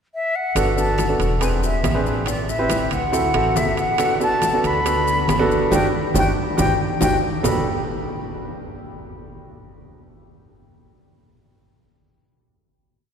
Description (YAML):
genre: Afro-Cuban jazz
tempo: 139 BPM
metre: 4/4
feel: straight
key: G major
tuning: A4 = 440 Hz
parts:
  - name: concert flute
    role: melody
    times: 0.1-7.6 s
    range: D5 to B5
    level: -23 LUFS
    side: left 1 dB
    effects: none
  - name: clear grand piano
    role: accompaniment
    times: 0.6-7.6 s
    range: B3 to B4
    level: -22 LUFS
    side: right 2 dB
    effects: none
  - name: upright bass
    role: bass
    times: 0.6-7.6 s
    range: E1 to D2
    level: -25 LUFS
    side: equal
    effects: none
  - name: bongos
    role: percussion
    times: 0.6-7.5 s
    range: none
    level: -30 LUFS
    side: left 4 dB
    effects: none
  - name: congas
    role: percussion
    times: 0.6-7.5 s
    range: none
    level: -30 LUFS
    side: right 2 dB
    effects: none
  - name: maracas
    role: percussion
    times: 0.6-7.5 s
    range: none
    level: -34 LUFS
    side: left 6 dB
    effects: none
  - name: timbales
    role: percussion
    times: 0.6-7.5 s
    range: none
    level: -30 LUFS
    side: right 5 dB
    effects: none
room: wet cathedral reverb, RT60 5.0 s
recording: recorded in a church or concert hall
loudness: -17 LUFS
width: side -7 dB against mid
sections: 0.0-0.6 pickup bar; 0.6-7.4 A section; 7.4-9.2 final chord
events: band accent 5.7-7.4; drum fill 6.8-7.4; grand piano fill 6.8-7.4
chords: 0.0 N.C.; 0.6 Gmaj7; 1.4 E7b13; 2.3 Am7; 3.1 D9; 4.0 Gmaj7